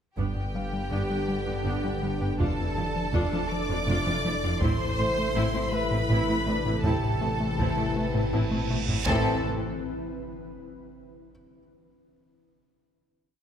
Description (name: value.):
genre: cinematic, hybrid orchestral and electronic film score.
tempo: 54 BPM (dotted quarters).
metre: 6/8.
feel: straight.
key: A minor.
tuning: A4 = 440 Hz.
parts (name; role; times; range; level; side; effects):
clear symphonic violin section; melody; 0.2-9.5 s; G5 to D6; -34 LUFS; equal; none.
clear symphonic violin section; second line; 0.2-9.5 s; G4 to D5; -34 LUFS; left 1 dB; none.
warm symphonic viola section; accompaniment; 0.2-9.5 s; G3 to F4; -35 LUFS; right 2 dB; none.
glassy FM pad; sustained chords; 0.7-9.5 s; C3 to B4; -34 LUFS; left 1 dB; ensemble chorus, built-in reverb.
mellow French horn section; sustained chords; 0.2-9.4 s; C3 to E4; -36 LUFS; left 2 dB; none.
rubbery square bass; riff; 0.2-9.0 s; F2 to A3; -32 LUFS; left 2 dB; none.
clear symphonic cello section; bass; 0.2-9.5 s; F2 to A2; -34 LUFS; right 2 dB; none.
dark detuned saw bass; bass; 0.2-9.5 s; F1 to A1; -34 LUFS; equal; none.
rich studio double bass section; bass; 0.2-9.5 s; F1 to A1; -35 LUFS; right 3 dB; none.
taiko ensemble; drums; 0.2-10.5 s; none; -32 LUFS; right 1 dB; none.
warm concert grand piano; texture; 0.6-9.1 s; B3 to G5; -42 LUFS; left 2 dB; none.
reverse cymbal and impact; sound effects; 8.3-11.3 s; none; -38 LUFS; right 3 dB; none.
room: wet scoring stage reverb, RT60 2.0 s.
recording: none.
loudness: -24 LUFS.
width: side -8 dB against mid.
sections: 0.2-9.1 theme; 9.1-11.3 final chord.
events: reverse cymbal 8.3-9.1; drum fill 8.5-9.1; impact 9.1-11.3.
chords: 0.2 G; 2.4 Dmadd9/F; 4.6 Am; 6.8 Amadd9.